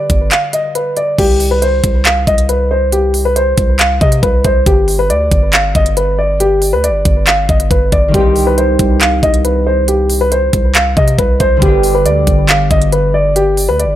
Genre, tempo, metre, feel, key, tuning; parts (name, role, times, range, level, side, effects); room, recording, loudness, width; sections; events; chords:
hip hop, trap; 138 BPM; 4/4; half-time; A4 = 440 Hz
dark concert grand piano; melody; 0.0-14.0 s; G4 to F5; -13 LUFS; equal; digital delay
concert harp; accompaniment; 0.0-1.2, 8.1-14.0 s; D3 to G4; -19 LUFS; equal
long sustained 808-style bass; bass; 0.1-14.0 s; G1 to C3; -16 LUFS; equal
trap drum kit; drums; 0.1-13.9 s; crash cymbal, handclaps, hi-hat, kick drum; -13 LUFS; equal
digital ambience; -10 LUFS; side -12 dB against mid
0.0-1.2 A section; 1.2-14.0 B section
kick muted 0.3-1.2
0.0 G; 1.2 N.C.; 4.7 G5; 8.1 Cm; 11.6 G